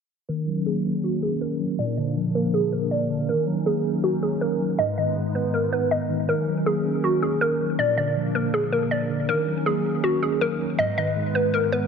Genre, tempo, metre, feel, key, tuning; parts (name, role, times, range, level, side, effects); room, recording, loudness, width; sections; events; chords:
hip hop; 160 BPM; 4/4; half-time; Eb minor; A4 = 440 Hz
hollow square pluck; melody; 0.3-11.9 s; Gb4 to Eb5; -24 LUFS; equal; chorus, low-pass filter, ping-pong delay
mellow tine electric piano; accompaniment; 0.3-11.9 s; Ab2 to Db4; -25 LUFS; equal; medium stereo tremolo, low-pass filter
hollow soft pad; sustained chords; 0.3-11.9 s; F3 to Cb5; -30 LUFS; left 1 dB; ensemble chorus, low-pass filter
light reverb; -21 LUFS; side -6 dB against mid
0.3-11.9 A section
filter sweep 0.3-11.9
0.3 Ebm7; 1.8 Bb; 3.3 Ebm7; 4.8 Abm; 6.3 Ebm7; 7.8 Bb; 9.3 Ebm7; 10.8 Abm